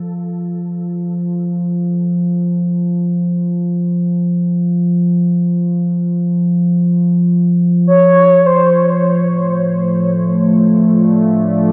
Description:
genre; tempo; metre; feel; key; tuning
dark ambient drone; free time; none; none; unclear; A4 = 439 Hz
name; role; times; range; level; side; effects
deep rumbling drone; drone; 0.0-11.7 s; E#3; -16 LUFS; equal; built-in reverb
mellow horn-like synth lead; melody; 7.9-9.0 s; B#4 to C#5; -16 LUFS; equal; chorus, delay
deep dark ambient pad; sustained chords; 9.8-11.7 s; A3 to D5; -16 LUFS; equal; chorus, built-in reverb
room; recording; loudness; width
wet huge ambient reverb, RT60 8.2 s; dark, warm production, nothing above 8.0 kHz; -14 LUFS; mono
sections
0.0-11.7 A section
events
fade-in on synth drone 0.0-11.7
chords
0.0 N.C.; 9.0 Dm

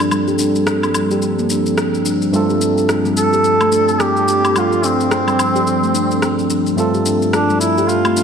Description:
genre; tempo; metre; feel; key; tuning
organic downtempo; 108 BPM; 4/4; swing 59% on 16ths; unclear; A4 = 441 Hz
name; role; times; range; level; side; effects
barky tine electric piano; accompaniment; 0.0-8.2 s; G2 to A4; -21 LUFS; right 1 dB; overdrive, low-pass filter, tape echo
warbly tape-like pad; sustained chords; 0.0-8.2 s; F3 to A4; -21 LUFS; equal; chorus, built-in reverb
steel tongue drum; arpeggios; 0.0-8.2 s; G3 to G4; -20 LUFS; left 1 dB; low-pass filter, tape echo
electronic woodblock, shaker and rim click; drums; 0.0-8.2 s; none; -23 LUFS; left 2 dB; overdrive
warm duduk; melody; 3.2-8.2 s; C4 to A4; -16 LUFS; right 1 dB; tape echo
room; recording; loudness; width
wet plate reverb, RT60 2.7 s; dreamy mix soaked in reverb; -13 LUFS; side -7 dB against mid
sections
0.0-8.2 A section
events
filter sweep on tine electric piano 0.0-8.2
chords
0.0 Gm7; 2.3 F/G

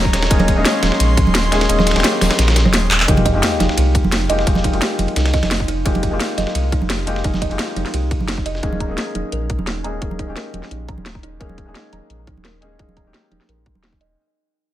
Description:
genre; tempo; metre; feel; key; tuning
liquid drum and bass; 173 BPM; 4/4; straight; unclear; A4 = 439 Hz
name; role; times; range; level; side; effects
felt-muted upright piano; accompaniment; 0.0-14.2 s; Ab3 to Ab4; -23 LUFS; left 2 dB; digital delay
airy breathy pad; sustained chords; 0.0-3.1 s; Ab3 to C6; -24 LUFS; right 1 dB; chorus
warm sub bass; bass; 0.0-14.2 s; Eb1 to C2; -20 LUFS; equal; none
drum and bass drum kit; drums; 0.1-14.1 s; handclaps, hi-hat, rim click, snare drum; -21 LUFS; equal; overdrive, low-pass filter on hats, low-pass filter on snare
dusty soul sampler-style drum kit; drums; 0.1-8.6 s; ride cymbal, snare drum; -24 LUFS; right 1 dB; high-pass filter on cymbals, high-pass filter on snare
electronic kick drum; drums; 0.1-14.0 s; none; -20 LUFS; equal; overdrive
congas; percussion; 0.4-13.8 s; none; -24 LUFS; right 3 dB; none
kalimba; arpeggios; 3.1-14.2 s; Eb4 to Bb5; -26 LUFS; right 4 dB; low-pass filter, ping-pong delay
sub drop; sound effects; 3.1-4.5 s; none; -25 LUFS; equal; none
room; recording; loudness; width
digital ambience; none; -15 LUFS; side -13 dB against mid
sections
0.0-3.1 A section; 3.1-14.2 B section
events
drop 0.0-3.1; kick drops out 1.7-3.1; drum fill 2.9; fade-out 3.1-14.2; impact 3.1-4.5; filter sweep on kalimba 3.1-14.2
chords
0.0 Eb7sus4; 3.1 Fm11; 8.6 Eb7sus4

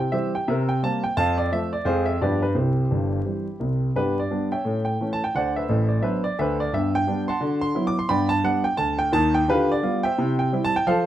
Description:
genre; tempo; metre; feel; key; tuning
jazz, stride piano; 173 BPM; 4/4; swing 59% on 8ths; C major, G major from 4.0 s; A4 = 440 Hz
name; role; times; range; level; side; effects
clear grand piano; solo; 0.0-11.1 s; G1 to D6; -20 LUFS; equal; none
room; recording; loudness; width
moderate club reverb, RT60 0.7 s; dark, warm production, vinyl crackle; -21 LUFS; side -12 dB against mid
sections
0.0-4.0 A section; 4.0-11.1 B section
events
none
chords
0.5 C5; 1.2 F; 1.9 Fm; 2.2 G7; 2.6 C; 4.0 G; 4.7 A7; 5.3 D13; 6.7 G; 7.4 D13; 8.1 G; 9.5 G7/D; 10.2 C

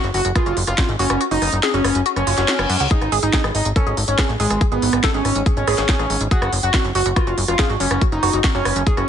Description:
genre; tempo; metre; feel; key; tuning
psychedelic trance; 141 BPM; 4/4; straight; unclear; A4 = 440 Hz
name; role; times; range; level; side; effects
woody wave-folded pluck; riff; 0.0-9.0 s; E#4 to F#5; -25 LUFS; moving between left 4 dB and right 3 dB; chorus, auto-pan, sidechain pumping, digital delay
plucky analog bass; bass; 0.0-9.0 s; F#1 to F#2; -22 LUFS; equal; none
techno drum kit; drums; 0.0-9.1 s; hi-hat, rim click, snare drum; -23 LUFS; equal; none
overdriven synth lead; melody; 0.1-9.1 s; G#3 to F#4; -22 LUFS; right 1 dB; distortion, phaser, sidechain pumping, digital delay
electronic kick drum; drums; 0.4-9.0 s; none; -18 LUFS; equal; none
reverse cymbal; sound effects; 2.3-2.9 s; none; -28 LUFS; left 5 dB; none
room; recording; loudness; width
digital ambience; nothing above 10.7 kHz; -16 LUFS; side -9 dB against mid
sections
0.0-9.1 A section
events
kick drops out 1.2-2.9; reverse cymbal 2.3-2.9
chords
0.0 F#5; 2.9 G#sus4; 6.3 F#5

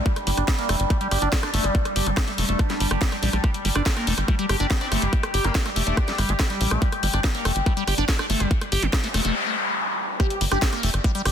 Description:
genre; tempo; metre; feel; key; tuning
psychedelic trance; 142 BPM; 4/4; straight; G minor; A4 = 440 Hz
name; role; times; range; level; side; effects
overtone-sweeping drone; sustained chords; 0.0-11.3 s; G3 to G4; -30 LUFS; equal; chorus, built-in reverb, phaser, sidechain pumping
liquid acid bass; riff; 0.0-11.3 s; G3 to G4; -28 LUFS; moving between left 4 dB and right 3 dB; phaser, auto-pan, sidechain pumping, ping-pong delay
electronic kick drum; drums; 0.1-11.1 s; none; -22 LUFS; equal; small room reverb
garage drum kit; drums; 0.1-11.3 s; hi-hat, rim click, snare drum; -27 LUFS; left 1 dB; small room reverb
tight sequencer bass; bass; 0.3-11.3 s; F1 to Bb1; -24 LUFS; equal; none
metallic wobble bass; second line; 4.8-6.2 s; Bb3 to D4; -36 LUFS; left 4 dB; none
noise sweep; sound effects; 8.9-10.2 s; none; -27 LUFS; left 2 dB; none
wide unison lead; melody; 10.2-10.7 s; G4; -28 LUFS; left 1 dB; phaser, sidechain pumping, digital delay
room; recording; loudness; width
light reverb, digital ambience; dense, heavily limited modern master; -20 LUFS; side -9 dB against mid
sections
0.0-10.2 A section; 10.2-11.3 B section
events
noise sweep 8.9-10.2; break 9.4-10.2; drop 10.2-11.3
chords
0.0 G5

